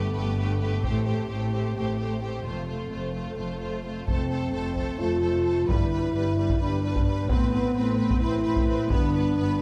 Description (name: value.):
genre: cinematic, epic orchestral film score.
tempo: 260 BPM (eighths).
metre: 7/8.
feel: straight.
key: unclear.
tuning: A4 = 440 Hz.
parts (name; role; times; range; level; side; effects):
rich symphonic violin section; melody; 0.0-9.6 s; B4 to C5; -42 LUFS; equal; none.
bright symphonic violin section; second line; 0.0-9.6 s; F4 to B4; -39 LUFS; equal; none.
warm symphonic viola section; accompaniment; 0.0-9.6 s; G3 to C4; -37 LUFS; equal; none.
mellow French horn section; sustained chords; 0.0-9.6 s; B3 to A4; -31 LUFS; equal; none.
dark symphonic cello section; bass; 0.0-9.6 s; F2 to A2; -33 LUFS; equal; none.
dark symphonic double bass section; bass; 0.0-9.6 s; F1 to A1; -33 LUFS; equal; none.
taiko ensemble; drums; 0.8-9.3 s; none; -30 LUFS; equal; none.
room: moderate scoring stage reverb, RT60 1.7 s.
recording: none.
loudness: -26 LUFS.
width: mono.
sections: 0.0-4.1 A section; 4.1-9.6 B section.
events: build-up 0.0-4.1.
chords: 0.0 Gadd9; 0.8 Am7; 2.5 F; 5.7 G; 7.3 Amadd9; 8.9 G.